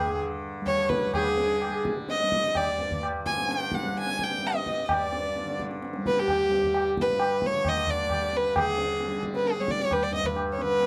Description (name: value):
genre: indian classical, Hindustani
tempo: 130 BPM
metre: 4/4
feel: straight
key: G raga puriya dhanashri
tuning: A4 = 441 Hz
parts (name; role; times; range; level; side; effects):
- clear violin; melody; 0.0-10.9 s; G4 to Ab5; -29 LUFS; equal; none
- hand-pumped harmonium; second line; 0.0-6.9 s; G4 to Ab5; -35 LUFS; equal; none
- tanpura; drone; 0.0-10.9 s; G2 to G3; -37 LUFS; equal; none
- tabla; percussion; 0.7-10.9 s; none; -33 LUFS; equal; none
room: light reverb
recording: dry, close 1970s-style studio recording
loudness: -27 LUFS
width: mono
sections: 0.0-1.1 A section; 1.1-8.6 B section; 8.6-10.9 C section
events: speeding up 0.0-10.9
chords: none